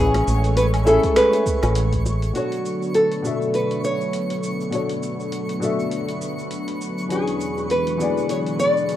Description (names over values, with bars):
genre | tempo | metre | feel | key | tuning
sunset chillout | 101 BPM | 4/4 | swing 57% on 16ths | B dorian | A4 = 439 Hz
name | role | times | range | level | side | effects
nylon-string guitar | melody | 0.0-9.0 s | F#4 to D5 | -21 LUFS | equal | digital delay
dark grand piano | accompaniment | 0.0-9.0 s | B2 to E5 | -27 LUFS | moving between left 4 dB and right 2 dB | auto-pan, digital delay
lush unison pad | sustained chords | 0.0-9.0 s | E2 to C#5 | -27 LUFS | equal | chorus
mellow fretless electric bass | bass | 0.0-2.3 s | A1 | -20 LUFS | equal | none
twinkling granular texture | texture | 0.0-9.0 s | C#6 | -36 LUFS | equal | built-in reverb
dusty soul sampler-style drum kit | drums | 0.1-9.0 s | cabasa, finger snaps, hi-hat, woodblock | -35 LUFS | equal | none
bongos | percussion | 0.1-2.2 s | none | -30 LUFS | left 1 dB | none
electronic kick drum | drums | 1.0-2.0 s | none | -25 LUFS | equal | overdrive
room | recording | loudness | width
wet studio reverb, RT60 0.5 s | rough home demo mix | -19 LUFS | side -12 dB against mid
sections
0.0-2.4 A section; 2.4-9.0 B section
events
none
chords
0.0 Amaj9; 2.4 Bm9; 7.1 E13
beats
0.57 1.17 1.76 | 2.35 2.95 3.54 4.14 | 4.73 5.32 5.92 6.51 | 7.11 7.70 8.29 8.89